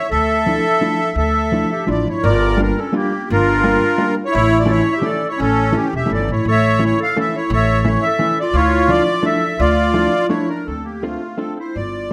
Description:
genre	musette waltz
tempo	171 BPM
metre	3/4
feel	straight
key	D harmonic minor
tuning	A4 = 441 Hz
part	accordion	melody	0.0-12.1 s	C#4 to F5	-20 LUFS	equal	light tremolo tuning
part	clear clarinet	second line	0.1-12.1 s	A3 to A4	-26 LUFS	equal	none
part	upright bass	bass	0.1-12.1 s	E1 to D2	-22 LUFS	equal	none
part	hollow-body jazz guitar	accompaniment	0.5-12.1 s	E3 to F4	-24 LUFS	equal	none
room	moderate recital hall reverb, RT60 1.2 s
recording	none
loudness	-17 LUFS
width	mono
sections	0.0-2.2 A section; 2.2-10.7 A section; 10.7-12.1 B section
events	none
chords	0.1 Dmadd9; 2.2 Gm7; 4.3 A; 8.5 Dmadd9; 10.7 Dm7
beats	| 0.11 0.46 0.81 | 1.17 1.52 1.88 | 2.24 2.59 2.95 | 3.30 3.65 4.00 | 4.34 4.69 5.04 | 5.39 5.74 6.09 | 6.45 6.80 7.15 | 7.50 7.85 8.20 | 8.54 8.89 9.24 | 9.59 9.94 10.30 | 10.66 11.03 11.39 | 11.75 12.12

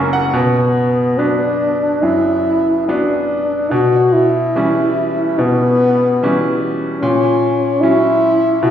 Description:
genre	classical, romantic duo for French horn and grand piano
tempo	66-76 BPM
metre	4/4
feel	rubato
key	unclear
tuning	A4 = 440 Hz
part	bright concert grand piano	accompaniment	0.0-8.7 s	F#1 to F#5	-17 LUFS	right 2 dB	none
part	mellow French horn	melody	0.3-8.7 s	B3 to F#4	-14 LUFS	left 1 dB	none
room	wet recital hall reverb, RT60 1.5 s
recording	recorded in a church or concert hall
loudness	-12 LUFS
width	side -9 dB against mid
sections	0.3-8.7 A section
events	none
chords	0.3 Bm; 3.7 C#m7b5/B; 7.0 F#/A#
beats	| 0.33 1.18 2.02 2.88 | 3.71 4.55 5.38 6.20 | 7.01 7.81 8.62

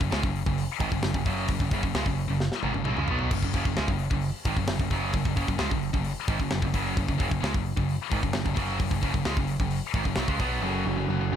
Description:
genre	heavy metal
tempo	131 BPM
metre	4/4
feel	straight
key	unclear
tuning	A4 = 443 Hz
part	distorted electric guitar	riff	0.0-11.4 s	F#2 to B3	-31 LUFS	right 10 dB	distortion
part	scooped high-gain guitar	riff	0.0-11.4 s	F#2 to B3	-31 LUFS	left 11 dB	distortion
part	growling picked electric bass	bass	0.0-11.4 s	F#1 to C#2	-32 LUFS	equal	overdrive
part	tight metal drum kit	drums	0.0-10.5 s	crash cymbal, hi-hat, kick drum, snare drum, toms	-29 LUFS	equal	none
part	pipe organ, flutes	sustained chords	10.6-11.4 s	C#4 to F#5	-38 LUFS	right 1 dB	none
part	overdriven semi-hollow guitar	riff	10.6-11.4 s	F#2 to F#3	-31 LUFS	equal	none
room	little or no reverb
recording	none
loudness	-25 LUFS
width	side -9 dB against mid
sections	0.0-10.6 A section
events	drum fill 2.4-3.3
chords	0.0 F#5; 10.6 F#m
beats	0.11 0.57 1.03 | 1.48 1.94 2.40 2.85 | 3.31 3.77 4.22 4.68 | 5.14 5.59 6.05 6.51 | 6.96 7.42 7.88 8.34 | 8.79 9.25 9.71 10.17 | 10.62 11.08

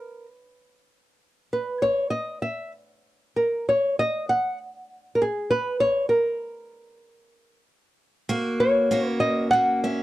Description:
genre	folk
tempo	97 BPM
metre	3/4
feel	straight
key	unclear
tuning	A4 = 440 Hz
part	nylon-string guitar	melody	0.0-10.0 s	G#4 to F#5	-22 LUFS	equal	none
part	picked steel-string acoustic guitar	arpeggios	8.3-10.0 s	A#3 to F#4	-25 LUFS	right 1 dB	none
room	light reverb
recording	dry, close 1970s-style studio recording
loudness	-21 LUFS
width	side -16 dB against mid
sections	0.0-8.3 A section; 8.3-10.0 B section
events	none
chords	0.0 N.C.; 8.3 F#/A#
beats	0.28 | 0.89 1.51 2.13 | 2.74 3.36 3.97 | 4.59 5.21 5.82 | 6.44 7.06 7.67 | 8.29 8.91 9.53

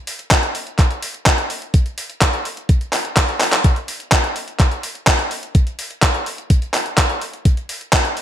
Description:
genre	italo disco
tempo	126 BPM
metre	4/4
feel	straight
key	none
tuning	none
part	clean 12-bit digital drum machine	drums	0.1-8.2 s	handclaps, hi-hat	-18 LUFS	equal	gated reverb
part	electronic kick drum	drums	0.3-8.0 s	none	-15 LUFS	equal	none
room	light reverb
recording	bright 1980s-style digital production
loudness	-16 LUFS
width	side -10 dB against mid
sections	0.0-8.2 A section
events	drum fill 3.4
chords	none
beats	0.31 0.79 1.26 | 1.74 2.22 2.69 3.17 | 3.65 4.12 4.60 5.07 | 5.55 6.03 6.50 6.98 | 7.45 7.93

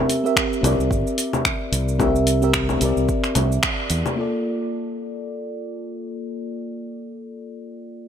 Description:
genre	sunset chillout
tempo	110 BPM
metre	4/4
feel	swing 57% on 16ths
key	Bb lydian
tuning	A4 = 440 Hz
part	mellow FM electric piano	accompaniment	0.0-8.1 s	Bb3 to E5	-24 LUFS	moving between left 5 dB and right 3 dB	chorus, auto-pan, tape echo
part	deep house drum kit	drums	0.1-4.2 s	congas, finger snaps, hi-hat, shaker	-23 LUFS	left 2 dB	overdrive
part	electronic kick drum	drums	0.4-3.8 s	none	-27 LUFS	right 1 dB	overdrive
part	fingered electric bass	bass	0.6-4.0 s	G1 to E2	-22 LUFS	right 1 dB	tube saturation
room	light reverb, digital ambience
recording	none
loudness	-19 LUFS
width	side -8 dB against mid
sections	0.0-4.2 A section; 4.2-8.1 B section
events	filter sweep on FM electric piano 0.0-4.2; band accent 3.6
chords	0.0 C7; 4.2 Bbmaj7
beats	0.36 0.91 1.46 | 2.00 2.55 3.09 3.64 | 4.18 4.73 5.27 5.82 | 6.36 6.91 7.46 8.00

